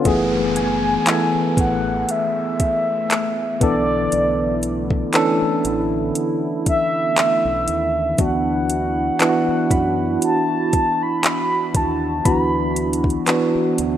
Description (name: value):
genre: contemporary R&B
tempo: 59 BPM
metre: 4/4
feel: swing 54% on 16ths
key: F# minor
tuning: A4 = 441 Hz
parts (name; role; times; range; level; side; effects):
- tine electric piano; accompaniment; 0.0-14.0 s; E3 to A4; -21 LUFS; equal; slow stereo tremolo
- hollow soft pad; sustained chords; 0.0-14.0 s; D3 to G#5; -26 LUFS; right 2 dB; chorus
- deep dub fingered electric bass; bass; 0.1-14.0 s; F#1 to F#2; -28 LUFS; equal; none
- smooth R&B drum kit; drums; 0.1-14.0 s; handclaps, hi-hat, kick drum; -21 LUFS; equal; none
- downlifter and swell; sound effects; 0.1-14.0 s; none; -35 LUFS; equal; none
- mellow horn-like synth lead; melody; 0.6-13.3 s; D5 to B5; -21 LUFS; equal; chorus
- soft round pluck; texture; 0.6-2.8, 9.7-14.0 s; G#5 to B5; -34 LUFS; equal; none
room: light reverb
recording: rough home demo mix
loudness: -17 LUFS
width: side -10 dB against mid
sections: 0.1-14.0 A section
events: none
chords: 0.1 F#m11; 3.6 Bm11; 8.2 D69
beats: | 0.05 1.07 2.09 3.10 | 4.12 5.14 6.16 7.17 | 8.19 9.21 10.22 11.24 | 12.26 13.27